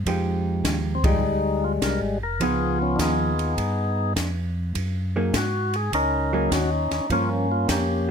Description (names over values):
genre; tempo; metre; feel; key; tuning
soul jazz organ trio; 102 BPM; 4/4; swing 68% on 8ths; unclear; A4 = 440 Hz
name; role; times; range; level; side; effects
mellow tonewheel organ; bass; 0.0-8.1 s; F1 to Ab2; -26 LUFS; equal; chorus vibrato, slow rotary speaker
vintage hollow-body jazz guitar; accompaniment; 0.1-8.1 s; F3 to Ab4; -26 LUFS; right 3 dB; none
open jazz drum kit; drums; 0.1-7.9 s; hi-hat, kick drum, ride cymbal, snare drum; -28 LUFS; equal; none
percussive tonewheel organ; melody; 0.9-8.1 s; G3 to Bb4; -24 LUFS; left 2 dB; slow rotary speaker
room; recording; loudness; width
light reverb; close, detailed microphones; -21 LUFS; side -7 dB against mid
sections
0.1-8.1 A section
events
band accent 0.9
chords
0.1 Fm9; 2.4 Db9; 4.8 Gb69; 7.1 Gm7b5